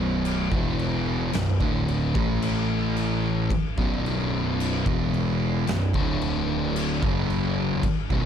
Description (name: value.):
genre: stoner and doom metal.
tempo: 55 BPM.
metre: 4/4.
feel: straight.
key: B minor.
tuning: A4 = 444 Hz.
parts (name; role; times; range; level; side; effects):
thick fuzz guitar; riff; 0.0-8.3 s; B1 to A3; -26 LUFS; left 5 dB; distortion.
thick fuzz guitar; riff; 0.0-8.3 s; B1 to A3; -29 LUFS; right 12 dB; distortion.
fuzz picked electric bass; bass; 0.0-8.3 s; B0 to A1; -30 LUFS; right 1 dB; overdrive.
oversized low-tuned drum kit; drums; 0.2-8.3 s; crash cymbal, kick drum, snare drum; -29 LUFS; equal; none.
room: small room ambience.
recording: dark, warm production.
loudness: -22 LUFS.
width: side -8 dB against mid.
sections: 0.0-8.3 A section.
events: none.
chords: 0.0 Bm; 2.1 A5; 3.8 B5; 5.9 D5; 7.0 B5.